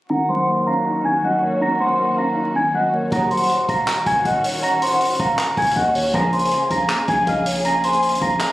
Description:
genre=hip hop, trap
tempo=159 BPM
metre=4/4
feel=half-time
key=Eb dorian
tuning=A4 = 439 Hz
part: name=large celesta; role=melody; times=0.1-8.5 s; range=C5 to Bb6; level=-19 LUFS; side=equal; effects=low-pass filter, ping-pong delay
part: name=hollow clarinet-like synth lead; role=second line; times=0.1-8.4 s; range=Db5 to Ab5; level=-25 LUFS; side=equal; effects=chorus, ping-pong delay
part: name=dark concert grand piano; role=accompaniment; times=0.1-3.1 s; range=Eb3 to Eb4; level=-23 LUFS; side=equal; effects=low-pass filter
part: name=muted studio string section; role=sustained chords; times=0.1-8.5 s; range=Db3 to Ab4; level=-29 LUFS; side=equal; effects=low-pass filter
part: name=warm brass ensemble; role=stabs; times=3.1-3.5, 6.1-6.5 s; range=Db2 to Gb3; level=-28 LUFS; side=equal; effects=ping-pong delay
part: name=warm 808-style bass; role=bass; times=3.1-8.4 s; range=Eb1 to Eb2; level=-28 LUFS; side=equal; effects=none
part: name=vintage drum kit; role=drums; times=3.1-8.5 s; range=handclaps, hi-hat, kick drum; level=-25 LUFS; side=equal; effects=none
room=light reverb, small room ambience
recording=recorded on a phone in the room, studio reverb, vinyl crackle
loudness=-16 LUFS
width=side -16 dB against mid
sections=0.1-3.1 A section; 3.1-8.5 B section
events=filter sweep 0.1-3.1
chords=0.1 Ebm7; 6.1 Bbm7

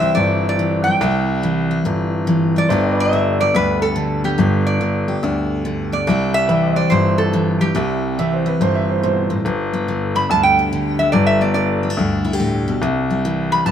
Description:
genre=honky-tonk and classic country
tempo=142 BPM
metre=4/4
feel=swing 64% on 8ths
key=G major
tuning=A4 = 440 Hz
part: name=lap resonator guitar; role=melody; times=0.0-13.7 s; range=G4 to B5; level=-19 LUFS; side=right 1 dB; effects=none
part: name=picked steel-string acoustic guitar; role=accompaniment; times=0.0-13.7 s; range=G2 to G4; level=-19 LUFS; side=left 1 dB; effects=none
part: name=pedal steel guitar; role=sustained chords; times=0.0-9.4 s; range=B4 to G5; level=-27 LUFS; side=left 1 dB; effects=none
part: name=bright grand piano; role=bass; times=0.0-13.7 s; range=G1 to D2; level=-22 LUFS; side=left 1 dB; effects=none
part: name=clear upright piano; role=second line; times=8.2-9.4 s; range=B4 to E5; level=-22 LUFS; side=right 7 dB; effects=none
room=light reverb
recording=minimal, uncompressed stereo recording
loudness=-15 LUFS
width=side -9 dB against mid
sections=0.0-9.4 A section; 9.4-13.7 B section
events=resonator guitar played with a steel bar solo 9.4-13.7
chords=0.0 C; 2.7 G; 6.1 C; 9.4 G; 12.8 C

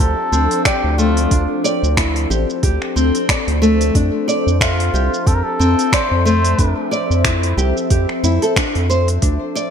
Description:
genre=organic downtempo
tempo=91 BPM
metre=4/4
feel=swing 57% on 16ths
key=unclear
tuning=A4 = 441 Hz
part: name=trumpet with cup mute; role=melody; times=0.0-6.9 s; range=F4 to C5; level=-23 LUFS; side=left 1 dB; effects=digital delay
part: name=warbly tape-like pad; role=sustained chords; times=0.0-9.7 s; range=F3 to E5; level=-22 LUFS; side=left 2 dB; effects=chorus, built-in reverb, sidechain pumping
part: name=nylon-string guitar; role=arpeggios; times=0.0-9.7 s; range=A3 to E5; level=-20 LUFS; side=equal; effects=lush chorus, ping-pong delay
part: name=round analog bass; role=bass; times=0.0-9.4 s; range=A1 to F2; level=-17 LUFS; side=equal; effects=tube saturation
part: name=organic electronic drum kit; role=drums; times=0.0-9.7 s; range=finger snaps, hi-hat, shaker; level=-21 LUFS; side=right 1 dB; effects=gated reverb
part: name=electronic kick drum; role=drums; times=0.7-9.4 s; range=none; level=-18 LUFS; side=equal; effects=none
room=light reverb, digital ambience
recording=bright 1980s-style digital production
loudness=-14 LUFS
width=side -7 dB against mid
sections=0.0-9.7 A section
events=none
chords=0.0 Dm7; 3.9 Fmaj7

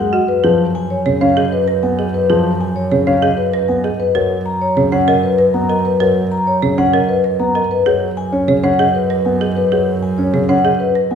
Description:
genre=classical, minimalist pattern music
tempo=194 BPM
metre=6/4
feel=straight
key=unclear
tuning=A4 = 440 Hz
part: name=vibraphone with soft mallets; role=melody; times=0.0-11.2 s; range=B4 to A#5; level=-17 LUFS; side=left 4 dB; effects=none
part: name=dark grand piano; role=accompaniment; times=0.0-11.2 s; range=C#3 to C#4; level=-19 LUFS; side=equal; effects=none
part: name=folk marimba with medium hard mallets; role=arpeggios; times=0.0-11.2 s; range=C#4 to C#5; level=-21 LUFS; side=right 6 dB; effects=none
part: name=warm double bass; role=bass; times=0.0-11.2 s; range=F#2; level=-20 LUFS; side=right 3 dB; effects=none
room=wet recital hall reverb, RT60 1.4 s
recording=recorded in a church or concert hall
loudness=-13 LUFS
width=side -7 dB against mid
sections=0.0-11.2 A section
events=none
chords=0.3 C#7(no3)/F#; 4.0 Bmaj7/F#; 7.7 G#m7/F#

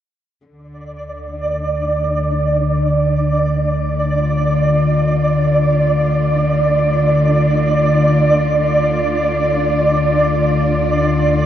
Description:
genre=dark ambient drone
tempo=free time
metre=none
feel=none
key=unclear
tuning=A4 = 443 Hz
part: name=rich studio cello section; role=sustained chords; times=0.5-11.5 s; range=D3 to D5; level=-25 LUFS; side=equal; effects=shimmer reverb
part: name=deep rumbling drone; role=drone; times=1.3-11.5 s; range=D2 to D3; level=-17 LUFS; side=left 2 dB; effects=built-in reverb
part: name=flickering grainy texture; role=texture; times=0.9-11.5 s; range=D5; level=-17 LUFS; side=right 2 dB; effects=built-in reverb, shimmer reverb
room=wet cathedral reverb, RT60 6.4 s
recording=worn, warbling old tape, cassette tape, warbly pitch drift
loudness=-13 LUFS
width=side -10 dB against mid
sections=0.5-11.5 A section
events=fade-in on cello section 0.5-11.5; filter sweep on synth drone 0.5-11.5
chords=0.5 Dm

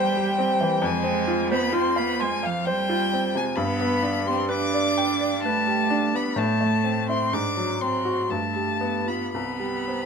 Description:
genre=classical, slow romantic movement for piano trio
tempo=55-68 BPM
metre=3/4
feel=rubato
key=unclear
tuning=A4 = 440 Hz
part: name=warm violin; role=melody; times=0.0-10.1 s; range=F5 to D6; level=-26 LUFS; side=left 5 dB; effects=none
part: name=rich cello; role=second line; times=0.0-10.1 s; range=F3 to D4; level=-28 LUFS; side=right 7 dB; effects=none
part: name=bright baby grand piano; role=accompaniment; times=0.0-10.1 s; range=C2 to C6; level=-25 LUFS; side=equal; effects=none
room=light reverb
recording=minimal, uncompressed stereo recording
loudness=-21 LUFS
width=side -6 dB against mid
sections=0.0-10.1 A section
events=none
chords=0.0 C/E; 0.8 F5; 3.6 G; 6.4 Am; 7.3 Ab7; 8.3 G9; 9.3 C5

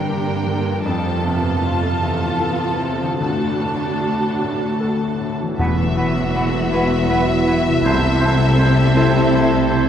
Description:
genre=cinematic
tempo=51 BPM (dotted quarters)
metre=6/8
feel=uneven beats, rubato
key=E minor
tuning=A4 = 441 Hz
part: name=rich studio violin section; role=second line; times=0.0-9.9 s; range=F#4 to A5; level=-26 LUFS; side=left 1 dB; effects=none
part: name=clear baby grand piano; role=accompaniment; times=0.0-9.9 s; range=C2 to B4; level=-24 LUFS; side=left 1 dB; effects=none
part: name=rich studio viola section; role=accompaniment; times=0.0-9.9 s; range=A3 to F#4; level=-26 LUFS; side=right 2 dB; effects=none
part: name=concert harp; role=arpeggios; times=0.0-9.9 s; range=G2 to A4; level=-26 LUFS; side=left 3 dB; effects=none
part: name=rich studio cello section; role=bass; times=0.0-9.9 s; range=D2 to C3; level=-22 LUFS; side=right 1 dB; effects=none
part: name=rich studio violin section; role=melody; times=5.6-9.9 s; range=E5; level=-24 LUFS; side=left 3 dB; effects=none
part: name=clear oboe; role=second line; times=5.6-9.9 s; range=B4 to C5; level=-26 LUFS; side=right 1 dB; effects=none
part: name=flute section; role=second line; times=5.6-9.8 s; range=F#5 to A5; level=-28 LUFS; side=equal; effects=none
part: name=mellow clarinet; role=second line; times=5.6-9.9 s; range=E4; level=-27 LUFS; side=right 1 dB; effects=none
part: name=mellow French horn section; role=sustained chords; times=5.6-9.9 s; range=F#3 to E4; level=-24 LUFS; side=left 1 dB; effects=none
part: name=rich studio double bass section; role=bass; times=5.6-9.9 s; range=E1 to C2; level=-22 LUFS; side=right 1 dB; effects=none
part: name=timpani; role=percussion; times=5.6-6.7 s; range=E2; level=-28 LUFS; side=equal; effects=none
room=wet cathedral reverb, RT60 5.5 s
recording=heard from further back in the room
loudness=-16 LUFS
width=side -9 dB against mid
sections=0.0-5.6 A section; 5.6-9.9 B section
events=none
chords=0.0 Gm; 0.9 F; 3.2 D; 5.6 Esus2; 7.9 C6

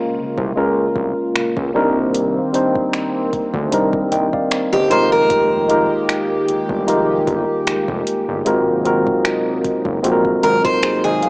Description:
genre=contemporary R&B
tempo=76 BPM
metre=4/4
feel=swing 54% on 16ths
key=C phrygian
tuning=A4 = 440 Hz
part: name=mellow tine electric piano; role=accompaniment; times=0.0-11.3 s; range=G3 to G5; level=-17 LUFS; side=equal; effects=fast stereo tremolo, cassette tape
part: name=chorused pulse-width pad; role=sustained chords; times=0.0-11.3 s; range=C3 to G4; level=-23 LUFS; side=equal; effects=cassette tape
part: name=fat analog bass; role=bass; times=0.2-11.3 s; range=F1 to D2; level=-23 LUFS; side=equal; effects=none
part: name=smooth R&B drum kit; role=drums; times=0.4-11.3 s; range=finger snaps, hi-hat, kick drum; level=-26 LUFS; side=equal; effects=cassette tape
part: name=picked steel-string acoustic guitar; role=arpeggios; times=4.7-11.3 s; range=G4 to C5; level=-16 LUFS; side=equal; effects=cassette tape
room=light reverb, digital ambience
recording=home recording on cassette, small speaker sound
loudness=-15 LUFS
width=side -28 dB against mid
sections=0.0-11.3 A section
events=none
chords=0.0 Db6; 1.7 Cm9; 4.9 Fm11; 8.5 Ab13

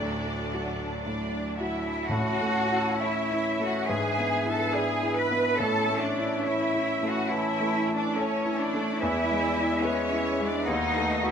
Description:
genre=classical, romantic movement for piano and orchestra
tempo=56-74 BPM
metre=4/4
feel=rubato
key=A major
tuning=A4 = 439 Hz
part: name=clear concert grand piano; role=melody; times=0.0-11.3 s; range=D2 to D5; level=-30 LUFS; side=equal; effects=none
part: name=rich symphonic violin section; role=melody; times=0.0-10.5 s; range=D5 to E5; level=-41 LUFS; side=left 3 dB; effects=none
part: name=rich symphonic violin section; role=second line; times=0.0-11.3 s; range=A3 to B5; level=-34 LUFS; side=left 2 dB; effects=none
part: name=clear symphonic viola section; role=accompaniment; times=0.0-10.5 s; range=F#3 to B4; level=-39 LUFS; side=right 3 dB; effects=none
part: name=rich symphonic cello section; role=bass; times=0.0-11.3 s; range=A2 to B4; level=-29 LUFS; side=right 2 dB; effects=none
part: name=hollow concert flute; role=second line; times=2.1-11.3 s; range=E5 to A5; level=-34 LUFS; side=left 2 dB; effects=none
part: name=mellow clarinet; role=second line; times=2.1-11.3 s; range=B4 to D5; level=-36 LUFS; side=right 1 dB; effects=none
part: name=mellow French horn section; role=sustained chords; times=2.1-11.3 s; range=E3 to D4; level=-36 LUFS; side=left 4 dB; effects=none
part: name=timpani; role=percussion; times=2.1-6.8 s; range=A2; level=-38 LUFS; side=equal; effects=none
room=wet recital hall reverb, RT60 1.4 s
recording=none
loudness=-24 LUFS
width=side -7 dB against mid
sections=0.0-2.1 A section; 2.1-11.3 B section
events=none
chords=0.0 D; 2.1 A; 3.9 E7/G#; 5.6 A; 9.0 E; 10.7 B7/D#

